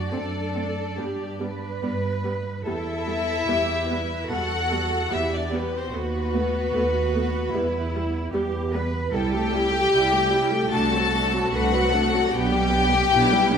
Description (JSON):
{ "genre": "classical, slow romantic movement for string orchestra", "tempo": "74 BPM", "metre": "4/4", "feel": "rubato", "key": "G major", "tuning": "A4 = 440 Hz", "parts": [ { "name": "rich studio violin section", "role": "melody", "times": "0.0-13.6 s", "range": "B4 to A5", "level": "-26 LUFS", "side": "left 3 dB", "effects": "none" }, { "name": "rich studio violin section", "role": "second line", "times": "0.0-13.6 s", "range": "B3 to A4", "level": "-28 LUFS", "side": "left 2 dB", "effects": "none" }, { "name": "dark studio double bass section", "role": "bass", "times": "0.0-13.6 s", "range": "B1 to G2", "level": "-28 LUFS", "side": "right 2 dB", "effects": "none" }, { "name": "warm studio cello section", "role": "bass", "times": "0.0-13.6 s", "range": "D4 to B4", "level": "-30 LUFS", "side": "right 3 dB", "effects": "none" }, { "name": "warm studio viola section", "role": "accompaniment", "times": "0.1-13.6 s", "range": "F#3 to G4", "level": "-27 LUFS", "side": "right 1 dB", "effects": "none" } ], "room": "wet scoring stage reverb, RT60 1.6 s", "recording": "none", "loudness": "-21 LUFS", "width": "side -7 dB against mid", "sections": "0.0-13.6 A section", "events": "none", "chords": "0.0 D7/F#; 1.0 G; 2.7 Em; 6.0 B7/D#; 7.6 Em; 9.1 Am7/C; 10.7 D7/C; 12.3 G/B", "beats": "0.14 1.00 1.85 | 2.68 3.49 4.32 5.13 | 5.95 6.76 7.56 8.35 | 9.14 9.92 10.73 11.54 | 12.34 13.13" }